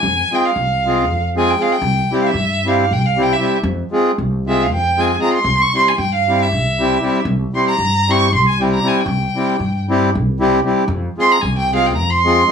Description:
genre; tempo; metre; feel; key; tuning
balkan folk, Balkan wedding band; 231 BPM (eighths); 7/8; straight; unclear; A4 = 440 Hz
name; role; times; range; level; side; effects
rich violin; melody; 0.0-12.5 s; E5 to Db6; -17 LUFS; right 2 dB; none
upright bass; bass; 0.0-12.4 s; C2 to G2; -20 LUFS; equal; none
accordion; accompaniment; 0.3-12.5 s; G3 to Ab4; -17 LUFS; left 1 dB; none
room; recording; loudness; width
moderate studio reverb, RT60 0.5 s; small room ambience; -14 LUFS; side -7 dB against mid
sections
0.0-12.5 A section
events
violin solo 0.0-12.5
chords
0.0 Fm; 1.8 C; 3.6 Fm; 5.4 C; 10.9 Fm

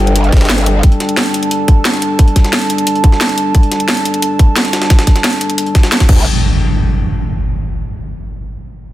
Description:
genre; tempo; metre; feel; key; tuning
dark technical drum and bass; 177 BPM; 4/4; straight; unclear; A4 = 440 Hz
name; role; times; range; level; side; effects
dark analog pad; sustained chords; 0.0-6.2 s; G3 to A5; -17 LUFS; equal; chorus, sidechain pumping
growl bass; bass; 0.0-0.8, 6.1-6.2 s; G1; -13 LUFS; equal; chorus, overdrive, sidechain pumping
drum and bass drum kit; drums; 0.1-6.2 s; crash cymbal, hi-hat, snare drum; -17 LUFS; equal; overdrive, small room ambience
jungle sampler-style drum kit; drums; 0.2-6.1 s; hi-hat, snare drum; -22 LUFS; equal; high-pass filter on hats, small room ambience, high-pass filter on snare
electronic kick drum; drums; 0.3-6.2 s; none; -8 LUFS; equal; small room ambience
impact; sound effects; 6.2-7.4 s; none; -16 LUFS; equal; none
room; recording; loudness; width
moderate lush hall reverb, RT60 2.1 s; dense, heavily limited modern master; -10 LUFS; side -14 dB against mid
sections
0.0-6.3 A section; 6.3-7.6 B section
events
none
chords
0.0 G5; 6.3 N.C.

